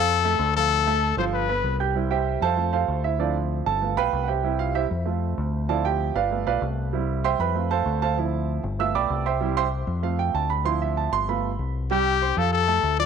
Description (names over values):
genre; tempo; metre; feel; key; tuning
latin, salsa; 193 BPM; 4/4; straight; C major; A4 = 439 Hz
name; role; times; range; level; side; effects
bright trumpet; melody; 0.0-1.8, 11.9-13.1 s; G4 to D5; -22 LUFS; left 12 dB; none
clear concert grand piano; accompaniment; 0.0-13.1 s; F3 to G6; -25 LUFS; right 11 dB; none
deep dub fingered electric bass; bass; 0.0-13.1 s; G1 to F2; -26 LUFS; left 2 dB; none
room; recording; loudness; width
light reverb, studio ambience; 1960s-style stereo with parts hard left and right; -22 LUFS; side -6 dB against mid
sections
0.0-2.0 A section; 2.0-11.9 B section; 11.9-13.1 A section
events
grand piano solo 2.0-11.9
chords
0.1 F; 0.7 Dm; 1.3 G7; 2.0 C; 2.6 F; 3.2 Dm7; 3.8 G7; 4.4 C; 5.1 F; 5.7 Dm7; 6.3 G7; 6.9 C; 7.6 F; 8.2 Dm7; 8.8 G7; 9.4 C; 10.0 F; 10.7 Dm7; 11.3 G7; 11.9 C5; 12.5 F